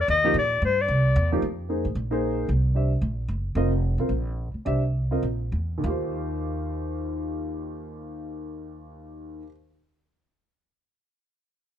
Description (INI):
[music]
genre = jazz, small-group swing and bop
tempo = 191-225 BPM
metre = 4/4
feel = swing 60% on 8ths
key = Eb major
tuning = A4 = 437 Hz
[part]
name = warm clarinet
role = melody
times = 0.0-1.3 s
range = C5 to Eb5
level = -22 LUFS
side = left 4 dB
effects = none
[part]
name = upright bass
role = bass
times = 0.0-9.4 s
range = F1 to Bb2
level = -26 LUFS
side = right 1 dB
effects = none
[part]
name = dark baby grand piano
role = accompaniment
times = 0.2-9.5 s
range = Eb2 to E5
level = -29 LUFS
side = equal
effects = none
[sound]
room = light reverb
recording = none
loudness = -23 LUFS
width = side -10 dB against mid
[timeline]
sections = 0.0-1.4 A section; 1.4-5.8 B section; 5.8-8.3 C section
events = slowing down 3.6-5.8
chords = 0.0 Ebmaj7; 0.9 C7; 1.4 Fm7; 2.0 Bb9sus4; 2.5 Cadd9; 3.0 Gb; 3.6 F7sus4; 4.1 N.C.; 4.7 C9; 5.2 N.C.; 5.8 Eb69